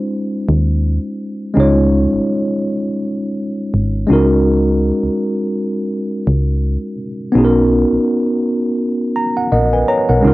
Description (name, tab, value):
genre	contemporary R&B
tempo	83 BPM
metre	4/4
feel	swing 58% on 16ths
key	unclear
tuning	A4 = 435 Hz
part	tine electric piano	accompaniment	0.0-10.3 s	Ab3 to Bb5	-15 LUFS	equal	medium stereo tremolo
part	solid FM bass	bass	0.5-10.3 s	Ab1 to Eb2	-15 LUFS	equal	none
room	light reverb, digital ambience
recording	home recording on cassette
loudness	-14 LUFS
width	side -19 dB against mid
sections	0.0-10.3 A section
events	tine electric piano fill 8.8-10.2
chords	0.0 Dbmaj9; 4.1 Gb69/Db; 7.4 Cbmaj9